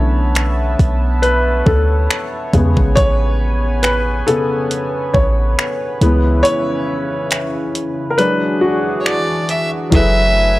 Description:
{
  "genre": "contemporary R&B",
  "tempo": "69 BPM",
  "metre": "4/4",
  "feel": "swing 54% on 16ths",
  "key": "unclear",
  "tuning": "A4 = 439 Hz",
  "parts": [
    { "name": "warm baby grand piano", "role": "accompaniment", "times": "0.0-10.6 s", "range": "C#3 to C#5", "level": "-18 LUFS", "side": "left 2 dB", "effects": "none" },
    { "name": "chorused pulse-width pad", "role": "sustained chords", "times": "0.0-10.6 s", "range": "C#3 to A5", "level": "-22 LUFS", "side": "right 1 dB", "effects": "none" },
    { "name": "warm 808-style bass", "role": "bass", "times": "0.0-10.6 s", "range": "F#1 to E2", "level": "-15 LUFS", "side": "equal", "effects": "none" },
    { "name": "crisp 8-bit digital drum machine", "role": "drums", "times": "0.4-10.1 s", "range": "finger snaps, hi-hat, kick drum", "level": "-17 LUFS", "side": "equal", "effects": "none" },
    { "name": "rich fiddle", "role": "melody", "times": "9.0-10.6 s", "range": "C#5 to E5", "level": "-16 LUFS", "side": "equal", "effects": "none" }
  ],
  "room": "digital ambience",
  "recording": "dry, gritty hardware recording, transformer saturation",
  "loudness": "-13 LUFS",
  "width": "side -18 dB against mid",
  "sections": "0.0-9.9 A section",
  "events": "grand piano solo 0.0-9.9; kick muted 6.4-9.9",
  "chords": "0.0 Bm11; 2.5 Amaj9; 6.0 C#m7; 8.2 E9; 9.9 F#m11"
}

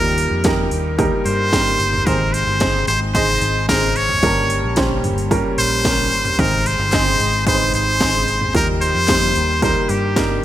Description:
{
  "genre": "piano-driven pop",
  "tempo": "111 BPM",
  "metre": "4/4",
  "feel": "straight",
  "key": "unclear",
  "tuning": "A4 = 440 Hz",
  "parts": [
    { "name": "trumpet with straight mute", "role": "melody", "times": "0.0-10.4 s", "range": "G4 to Db5", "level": "-18 LUFS", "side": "equal", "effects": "none" },
    { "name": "clear upright piano", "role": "accompaniment", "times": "0.0-10.4 s", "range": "G2 to Eb5", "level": "-21 LUFS", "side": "right 1 dB", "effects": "none" },
    { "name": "lush unison pad", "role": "sustained chords", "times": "0.0-10.4 s", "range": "Eb3 to Bb4", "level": "-30 LUFS", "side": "left 1 dB", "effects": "none" },
    { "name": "vintage muted fingered electric bass", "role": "bass", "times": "0.0-10.4 s", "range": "G1 to G2", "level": "-22 LUFS", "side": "equal", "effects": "none" },
    { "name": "house drum kit", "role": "drums", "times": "0.2-10.3 s", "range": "hi-hat, kick drum, snare drum, toms", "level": "-21 LUFS", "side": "equal", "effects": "overdrive" },
    { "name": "group handclap", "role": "percussion", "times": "6.9-10.3 s", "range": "none", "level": "-33 LUFS", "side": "left 4 dB", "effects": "none" }
  ],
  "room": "light reverb",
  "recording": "bright 1980s-style digital production",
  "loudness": "-15 LUFS",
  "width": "side -12 dB against mid",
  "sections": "0.0-10.4 A section",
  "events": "none",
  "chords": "0.0 Eb; 2.1 Ab; 4.2 Gdim; 6.4 Ab; 8.5 Eb"
}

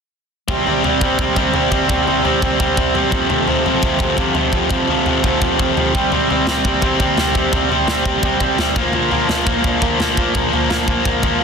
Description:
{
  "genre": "punk rock",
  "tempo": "170 BPM",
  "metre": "4/4",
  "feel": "straight",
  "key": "unclear",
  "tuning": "A4 = 441 Hz",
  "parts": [
    { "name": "distorted electric guitar", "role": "riff", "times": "0.5-11.4 s", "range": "F2 to C4", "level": "-18 LUFS", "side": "left 14 dB", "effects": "overdrive" },
    { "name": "raw garage guitar", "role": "riff", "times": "0.5-11.4 s", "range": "F2 to C4", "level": "-19 LUFS", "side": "right 13 dB", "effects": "overdrive" },
    { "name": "tight metal drum kit", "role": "drums", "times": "0.5-11.3 s", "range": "kick drum, snare drum, toms", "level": "-20 LUFS", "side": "equal", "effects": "none" }
  ],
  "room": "little or no reverb",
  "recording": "dense, heavily limited modern master",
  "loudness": "-14 LUFS",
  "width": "side -6 dB against mid",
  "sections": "0.5-11.4 A section",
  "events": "none",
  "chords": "0.5 C5; 3.1 F5; 6.0 C5; 8.8 Bb5"
}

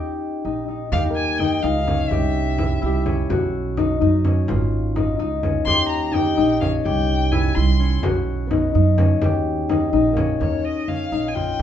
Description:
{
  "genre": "contemporary instrumental, chamber music in an uneven meter",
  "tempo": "253 BPM (eighths)",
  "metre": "5/8",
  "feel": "straight",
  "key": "Eb mixolydian",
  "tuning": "A4 = 440 Hz",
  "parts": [
    { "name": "concert harp", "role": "arpeggios", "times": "0.0-11.6 s", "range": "Db4 to Bb4", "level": "-21 LUFS", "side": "left 4 dB", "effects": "none" },
    { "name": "upright bass", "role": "bass", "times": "0.4-11.6 s", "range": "Ab1 to F#2", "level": "-22 LUFS", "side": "right 3 dB", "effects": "none" },
    { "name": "rich violin", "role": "melody", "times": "0.9-3.0, 5.7-7.9, 10.4-11.6 s", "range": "Db5 to C6", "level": "-25 LUFS", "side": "left 3 dB", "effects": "none" },
    { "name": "frame drum", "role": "percussion", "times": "0.9-11.6 s", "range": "none", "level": "-26 LUFS", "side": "equal", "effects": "none" },
    { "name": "nylon-string guitar", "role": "texture", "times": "1.1-3.5, 6.1-10.6 s", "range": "Bb3 to Bb4", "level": "-31 LUFS", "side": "right 2 dB", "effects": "none" }
  ],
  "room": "wet studio reverb, RT60 0.8 s",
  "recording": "heard from further back in the room, nothing above 7.8 kHz",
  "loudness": "-18 LUFS",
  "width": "side -10 dB against mid",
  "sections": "0.9-10.4 A section; 10.4-11.6 B section",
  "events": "none",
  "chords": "0.0 Eb; 2.1 C; 3.3 B; 4.5 Ab5; 5.7 Eb; 6.8 C; 8.0 B; 9.2 Eb"
}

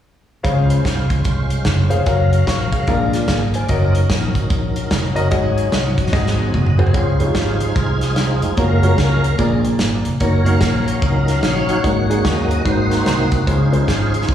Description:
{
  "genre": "uptempo gospel",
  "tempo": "147 BPM",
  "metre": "4/4",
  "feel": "swing 62% on 8ths",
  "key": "Db major",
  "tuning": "A4 = 440 Hz",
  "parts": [
    { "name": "warm upright piano", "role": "accompaniment", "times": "0.4-14.2 s", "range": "Ab2 to Db6", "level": "-20 LUFS", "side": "left 3 dB", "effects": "slapback echo" },
    { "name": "tonewheel organ", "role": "sustained chords", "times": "0.4-14.3 s", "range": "F3 to F5", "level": "-22 LUFS", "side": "right 1 dB", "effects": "slow rotary speaker, overdrive, chorus vibrato" },
    { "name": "fingered electric bass", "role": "bass", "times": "0.4-14.3 s", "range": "F1 to Eb2", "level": "-18 LUFS", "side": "right 1 dB", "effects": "none" },
    { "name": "natural country drum kit", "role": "drums", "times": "0.4-14.3 s", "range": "hi-hat, kick drum, snare drum, toms", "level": "-20 LUFS", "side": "equal", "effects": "none" }
  ],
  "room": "moderate club reverb, RT60 0.5 s",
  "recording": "live gig heard through the venue's PA, recital hall reverb, studio ambience",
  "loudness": "-14 LUFS",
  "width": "side -10 dB against mid",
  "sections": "0.4-6.9 A section; 6.9-14.3 B section",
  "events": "drum fill 6.1-6.9; tonewheel organ solo 6.9-14.3",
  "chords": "0.4 Dbmaj7; 2.1 Gbmaj7; 2.9 Bb7; 3.7 Ebm7/Gb; 5.3 Ab7sus4; 6.1 Ab7; 6.9 Dbmaj7; 8.6 Gbmaj7; 9.4 Bb7; 10.2 Ebm7/Gb; 11.8 Ab7sus4; 12.7 Ab7; 13.5 Dbmaj7"
}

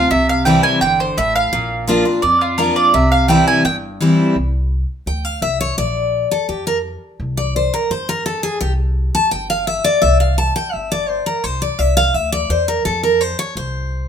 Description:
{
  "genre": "bluegrass",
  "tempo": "169 BPM",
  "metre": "4/4",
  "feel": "straight",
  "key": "C mixolydian",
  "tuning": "A4 = 438 Hz",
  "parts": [
    { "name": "mandolin", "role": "melody", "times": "0.0-3.8 s", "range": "F4 to Ab5", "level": "-14 LUFS", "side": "right 3 dB", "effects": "none" },
    { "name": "picked steel-string acoustic guitar", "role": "accompaniment", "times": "0.0-14.1 s", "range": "F2 to A5", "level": "-16 LUFS", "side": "left 1 dB", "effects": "none" },
    { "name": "upright bass", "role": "bass", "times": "0.0-14.0 s", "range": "G1 to F2", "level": "-21 LUFS", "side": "equal", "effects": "none" }
  ],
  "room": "moderate studio reverb, RT60 0.9 s",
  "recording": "minimal, uncompressed stereo recording",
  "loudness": "-14 LUFS",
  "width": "side -8 dB against mid",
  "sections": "0.0-4.4 A section; 4.4-14.1 B section",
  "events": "steel-string acoustic guitar solo 4.4-14.1",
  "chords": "0.1 C; 1.5 Bb; 2.9 C; 4.4 Cadd9; 5.8 Bb; 7.2 C; 12.9 F5"
}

